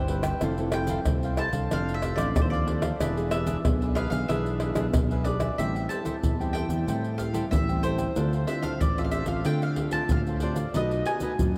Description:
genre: samba and choro.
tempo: 93 BPM.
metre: 4/4.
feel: straight.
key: A minor.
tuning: A4 = 440 Hz.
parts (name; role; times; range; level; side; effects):
mandolin; melody; 0.0-11.6 s; C5 to A5; -36 LUFS; equal; delay.
cavaquinho; accompaniment; 0.0-11.3 s; D4 to G5; -38 LUFS; equal; none.
nylon-string guitar; accompaniment; 0.0-11.6 s; A2 to B4; -34 LUFS; equal; none.
fingered electric bass; bass; 0.0-11.6 s; E1 to D3; -32 LUFS; equal; none.
pandeiro, tube shaker, surdo and tamborim; percussion; 0.1-11.6 s; none; -31 LUFS; equal; none.
room: moderate huge ambient reverb, RT60 8.3 s.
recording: dreamy mix soaked in reverb.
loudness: -27 LUFS.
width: mono.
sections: 0.0-5.6 A section; 5.6-11.6 B section.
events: none.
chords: 0.4 Fmaj7; 1.7 Dm7/F; 3.0 E7; 5.6 Am7; 8.2 Dm7; 10.8 B7.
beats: | 0.42 1.07 1.72 2.36 | 3.00 3.65 4.29 4.94 | 5.58 6.23 6.88 7.52 | 8.17 8.81 9.46 10.11 | 10.75 11.40.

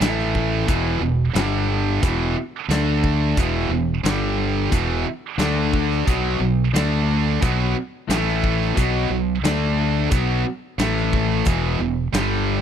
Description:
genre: classic rock.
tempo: 89 BPM.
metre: 4/4.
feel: straight.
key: unclear.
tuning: A4 = 442 Hz.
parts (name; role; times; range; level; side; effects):
overdriven semi-hollow guitar; riff; 0.0-12.6 s; E2 to D4; -24 LUFS; left 10 dB; none.
tight distorted guitar; riff; 0.0-12.6 s; E2 to D4; -23 LUFS; right 11 dB; distortion.
fingered electric bass; bass; 0.0-12.6 s; E1 to D2; -23 LUFS; equal; none.
big rock drum kit; drums; 0.0-12.3 s; hi-hat, kick drum, snare drum; -24 LUFS; equal; none.
room: little or no reverb.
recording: dry, close 1970s-style studio recording.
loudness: -18 LUFS.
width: side -8 dB against mid.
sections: 0.0-12.6 A section.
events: none.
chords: 0.0 A5; 0.7 E5; 1.3 G5; 2.0 E5; 2.7 D5; 3.4 E5; 4.0 G5; 4.7 E5; 5.4 D5; 6.1 B5; 6.7 D5; 7.4 B5; 8.1 A5; 8.8 B5; 9.4 D5; 10.1 B5; 10.8 A5; 11.5 E5.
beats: 0.00 | 0.67 1.35 2.02 2.69 | 3.37 4.04 4.72 5.39 | 6.07 6.74 7.41 8.09 | 8.76 9.44 10.11 10.78 | 11.46 12.13.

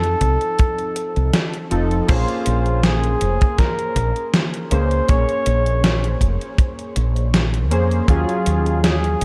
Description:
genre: vaporwave.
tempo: 80 BPM.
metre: 4/4.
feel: swing 53% on 16ths.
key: Bb minor.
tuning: A4 = 440 Hz.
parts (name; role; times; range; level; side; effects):
mellow flugelhorn; melody; 0.0-9.2 s; F4 to Db5; -27 LUFS; equal; vintage 12-bit sampler grit, tape echo.
warbly lo-fi synth keys; accompaniment; 0.0-9.2 s; F3 to Db5; -27 LUFS; equal; lush chorus, vintage 12-bit sampler grit.
woody fretless electric bass; bass; 0.0-9.2 s; F1 to F2; -21 LUFS; equal; lush chorus.
gated 80s digital drum machine; drums; 0.0-9.2 s; crash cymbal, hi-hat, snare drum; -24 LUFS; equal; gated reverb, gated reverb snare.
kick drum; drums; 0.2-8.2 s; none; -19 LUFS; equal; none.
room: studio reverb.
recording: none.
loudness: -19 LUFS.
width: mono.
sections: 0.0-2.1 A section; 2.1-9.2 B section.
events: none.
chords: 0.0 F7; 2.1 Bbm9; 8.1 Ebm11.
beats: 0.59 1.34 | 2.09 2.84 3.59 4.34 | 5.09 5.84 6.59 7.34 | 8.09 8.84.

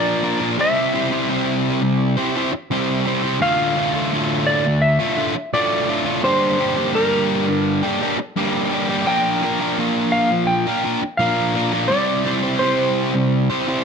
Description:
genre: rock.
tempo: 85 BPM.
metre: 4/4.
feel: straight.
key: unclear.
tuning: A4 = 440 Hz.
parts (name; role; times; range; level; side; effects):
clean lap steel guitar; melody; 0.0-13.8 s; Bb4 to G5; -21 LUFS; equal; slapback echo.
overdriven electric guitar; riff; 0.0-13.8 s; D2 to C5; -18 LUFS; equal; none.
room: moderate large studio reverb, RT60 0.9 s.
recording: none.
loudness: -17 LUFS.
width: side -6 dB against mid.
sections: 0.0-13.8 A section.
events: none.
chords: 0.0 Bb; 0.6 C; 3.4 Dm; 6.2 Gm; 9.1 Bb; 11.9 C.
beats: | 0.58 1.29 2.00 2.70 | 3.41 4.12 4.82 5.53 | 6.24 6.95 7.65 8.36 | 9.07 9.78 10.49 11.19 | 11.90 12.61 13.32.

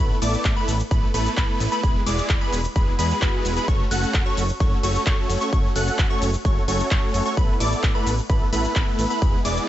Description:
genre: EDM, festival progressive house.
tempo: 130 BPM.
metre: 4/4.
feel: straight.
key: unclear.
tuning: A4 = 438 Hz.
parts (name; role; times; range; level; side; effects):
plucky unison lead; arpeggios; 0.0-9.7 s; B5 to F#6; -28 LUFS; equal; sidechain pumping, dub echo.
supersaw chords; riff; 0.0-9.7 s; G#3 to F#5; -26 LUFS; right 1 dB; cassette tape, sidechain pumping, dub echo.
fat analog bass; bass; 0.0-9.6 s; E1 to E2; -26 LUFS; equal; sidechain pumping.
big-room dance drum kit; drums; 0.2-9.7 s; handclaps, hi-hat, shaker; -29 LUFS; left 1 dB; none.
electronic kick drum; drums; 0.5-9.3 s; none; -21 LUFS; equal; none.
swell; sound effects; 2.9-3.7 s; none; -35 LUFS; left 1 dB; none.
room: digital ambience.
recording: nothing above 7.9 kHz.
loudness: -19 LUFS.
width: side -13 dB against mid.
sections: 0.0-9.7 A section.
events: swell 2.9-3.7.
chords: 0.0 Asus2; 1.8 E; 3.7 F#m; 7.4 Asus2.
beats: 0.45 0.91 1.37 | 1.83 2.30 2.76 3.22 | 3.68 4.14 4.60 5.07 | 5.53 5.99 6.45 6.91 | 7.37 7.83 8.30 8.76 | 9.22 9.68.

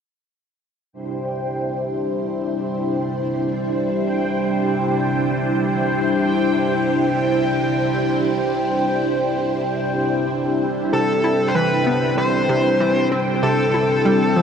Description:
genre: ambient.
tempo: free time.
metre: none.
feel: none.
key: C major.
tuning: A4 = 439 Hz.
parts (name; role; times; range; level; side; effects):
string machine, full ensemble; sustained chords; 0.9-14.4 s; C3 to C5; -19 LUFS; equal; phaser, ensemble chorus.
bubbling stepped-filter texture; texture; 1.1-14.4 s; G5; -27 LUFS; right 1 dB; chorus, built-in reverb.
smooth overdriven lead guitar; melody; 10.9-14.4 s; A4 to C5; -19 LUFS; left 2 dB; tape echo.
analog pluck; riff; 10.9-14.4 s; C3 to E4; -23 LUFS; right 1 dB; chorus, tape echo.
room: wet huge ambient reverb, RT60 7.8 s.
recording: none.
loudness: -18 LUFS.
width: side -7 dB against mid.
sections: 0.9-10.9 A section; 10.9-14.4 B section.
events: none.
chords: 0.9 Cadd9.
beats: free time.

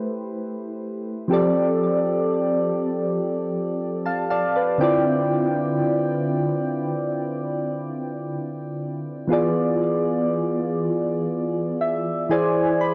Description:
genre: R&B.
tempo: 60 BPM.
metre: 4/4.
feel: straight.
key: unclear.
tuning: A4 = 441 Hz.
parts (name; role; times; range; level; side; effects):
soft electric-piano-like synth keys; solo; 0.0-12.9 s; D3 to B5; -23 LUFS; equal; chorus, phaser, tape echo.
room: light reverb.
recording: dry, gritty hardware recording, cassette tape.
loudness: -23 LUFS.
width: mono.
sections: 0.0-12.9 A section.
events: synth keys fill 3.8-5.3, 11.3-12.9.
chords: 0.0 Am9; 1.3 F6; 4.8 Dm9; 9.3 E7b9; 12.3 E7b13.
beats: 0.30 | 1.30 2.30 3.30 4.30 | 5.30 6.30 7.30 8.30 | 9.30 10.30 11.30 12.30.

